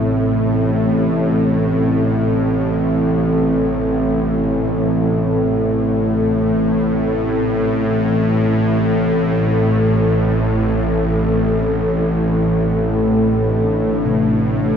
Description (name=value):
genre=ambient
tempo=free time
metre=none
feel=none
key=A minor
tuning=A4 = 440 Hz
part: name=dark analog pad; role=sustained chords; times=0.0-14.8 s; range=A3 to E5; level=-20 LUFS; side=left 1 dB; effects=chorus
part: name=gamelan-type bossed gongs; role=arpeggios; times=0.0-7.2, 14.1-14.8 s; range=C3 to G4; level=-30 LUFS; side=right 2 dB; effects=none
part: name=bowed-like drone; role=drone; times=0.0-14.8 s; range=A1 to A2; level=-16 LUFS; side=equal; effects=built-in reverb
room=moderate plate reverb, RT60 3.5 s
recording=echo-heavy mix, nothing above 7.7 kHz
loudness=-14 LUFS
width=side -7 dB against mid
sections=0.0-14.8 A section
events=none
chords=0.0 Am7; 12.5 Amadd11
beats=free time